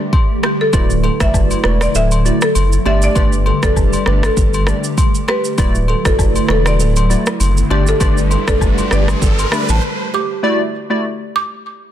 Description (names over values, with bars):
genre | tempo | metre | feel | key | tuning
afrobeats | 99 BPM | 4/4 | swing 55% on 16ths | D major | A4 = 440 Hz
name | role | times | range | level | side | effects
buzzing marimba with hard mallets | melody | 0.0-11.9 s | G4 to D6 | -21 LUFS | left 1 dB | digital delay
hollow soft pad | sustained chords | 0.0-10.4 s | D3 to G4 | -22 LUFS | equal | ensemble chorus
afro-pop drum kit | drums | 0.1-9.8 s | kick drum, rim click, shaker | -17 LUFS | equal | soft clipping on snare
agogo bells and woodblock | percussion | 0.1-9.5 s | none | -26 LUFS | left 5 dB | none
kalimba | riff | 0.4-10.2 s | G4 to B4 | -26 LUFS | right 9 dB | digital delay
warm analog keys | accompaniment | 0.7-11.1 s | A3 to D5 | -22 LUFS | left 1 dB | chorus
saturated sub bass | bass | 0.7-9.8 s | D1 to A1 | -16 LUFS | equal | none
riser | sound effects | 7.1-9.8 s | none | -26 LUFS | left 1 dB | none
room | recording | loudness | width
digital ambience | dense, heavily limited modern master | -12 LUFS | side -11 dB against mid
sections
0.0-10.4 A section; 10.4-11.9 B section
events
break 0.0-0.7, 9.8-10.4; riser 7.1-10.4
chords
0.0 Gsus2; 0.7 Dadd9; 2.9 Gsus2; 5.6 Dadd9; 7.7 Gsus2; 10.4 Dadd9